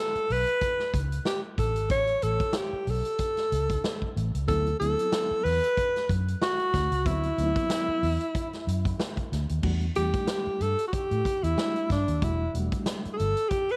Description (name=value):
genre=funk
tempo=93 BPM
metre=4/4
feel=swing 56% on 16ths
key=E minor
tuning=A4 = 440 Hz
part: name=breathy alto saxophone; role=melody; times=0.0-13.8 s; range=D4 to C#5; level=-30 LUFS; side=equal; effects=none
part: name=vintage muted fingered electric bass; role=bass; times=0.2-13.3 s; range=E1 to A2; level=-31 LUFS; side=equal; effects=none
part: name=swinging big-band drum kit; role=drums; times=0.2-13.8 s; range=crash cymbal, hi-hat, kick drum, snare drum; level=-35 LUFS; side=equal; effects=none
part: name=reed electric piano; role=stabs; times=4.5-13.3 s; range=F#3 to G4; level=-38 LUFS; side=equal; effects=fast tremolo
room=light reverb, small room ambience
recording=none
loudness=-27 LUFS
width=mono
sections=0.0-9.6 A section; 9.6-13.8 B section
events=alto saxophone solo 9.6-13.8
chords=0.0 Aadd9; 4.5 D13; 9.6 Em11